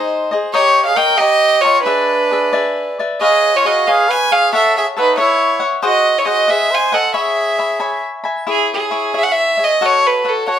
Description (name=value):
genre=mexican folk, mariachi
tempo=91 BPM (dotted quarters)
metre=6/8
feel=rubato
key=C# minor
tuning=A4 = 440 Hz
part: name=rich violin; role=melody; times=0.0-10.6 s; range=G#4 to G#5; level=-14 LUFS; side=right 1 dB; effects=plate reverb
part: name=warm trumpet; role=second line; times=0.0-8.0 s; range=D4 to B#4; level=-20 LUFS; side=right 3 dB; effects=none
part: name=cavaquinho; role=accompaniment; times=0.0-10.6 s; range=D#4 to B5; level=-19 LUFS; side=left 4 dB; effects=none
room=moderate studio reverb, RT60 0.5 s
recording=none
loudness=-12 LUFS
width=side -9 dB against mid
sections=0.0-8.5 A section; 8.5-10.6 B section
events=none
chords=0.0 G#; 0.5 D#7; 1.9 E7; 3.2 C#7; 4.5 F#m7; 5.8 G#7; 7.1 C#m7; 8.5 C#m; 9.8 F#m